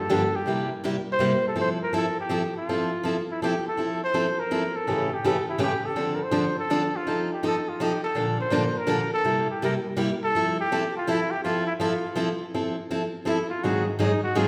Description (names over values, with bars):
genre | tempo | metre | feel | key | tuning
jazz | 164 BPM | 3/4 | swing 63% on 8ths | F major | A4 = 440 Hz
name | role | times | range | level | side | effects
warm trumpet | melody | 0.0-14.5 s | Bb3 to C5 | -30 LUFS | equal | none
picked steel-string acoustic guitar | accompaniment | 0.1-14.5 s | G2 to A4 | -28 LUFS | equal | none
room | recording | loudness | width
wet recital hall reverb, RT60 1.6 s | recorded in a church or concert hall | -26 LUFS | mono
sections
0.0-3.8 A section; 3.8-12.5 B section; 12.5-14.5 C section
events
trumpet solo 12.5-14.5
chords
0.5 C7; 1.6 Fmaj7; 4.9 A7; 6.0 Dm7; 7.1 F7; 8.2 Bbmaj7; 9.3 C7; 10.3 Fmaj7; 13.6 Ab7